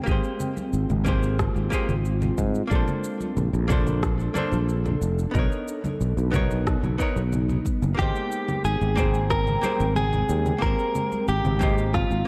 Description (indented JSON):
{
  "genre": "sunset chillout",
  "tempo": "91 BPM",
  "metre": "4/4",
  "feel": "straight",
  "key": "Ab major",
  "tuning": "A4 = 441 Hz",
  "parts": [
    { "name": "archtop guitar, miked and amplified", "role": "accompaniment", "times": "0.0-12.3 s", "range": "Ab3 to G5", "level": "-33 LUFS", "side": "equal", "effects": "delay" },
    { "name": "ethereal airy pad", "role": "sustained chords", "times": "0.0-12.3 s", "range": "Ab3 to G5", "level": "-34 LUFS", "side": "equal", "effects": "ensemble chorus, built-in reverb" },
    { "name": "sustaining fretless electric bass", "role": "bass", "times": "0.1-12.2 s", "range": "F1 to Ab2", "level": "-27 LUFS", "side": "equal", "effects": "none" },
    { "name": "electronic kick drum", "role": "drums", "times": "0.1-12.1 s", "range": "none", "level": "-29 LUFS", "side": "equal", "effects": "small room ambience" },
    { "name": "electronic shaker, congas and rim click", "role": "drums", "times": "0.1-12.2 s", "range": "none", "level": "-35 LUFS", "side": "equal", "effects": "small room ambience" },
    { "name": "congas", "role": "percussion", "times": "0.6-11.7 s", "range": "none", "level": "-36 LUFS", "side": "equal", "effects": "none" },
    { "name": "direct-recorded clean electric guitar", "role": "melody", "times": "8.0-12.3 s", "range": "F4 to Bb4", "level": "-28 LUFS", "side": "equal", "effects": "delay" }
  ],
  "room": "light reverb",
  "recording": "dark, warm production",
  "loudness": "-24 LUFS",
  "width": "mono",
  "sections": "0.0-12.3 A section",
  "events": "none",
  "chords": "0.0 Abmaj9; 2.7 Bbmaj9; 5.3 Bmaj9; 8.0 Abmaj9"
}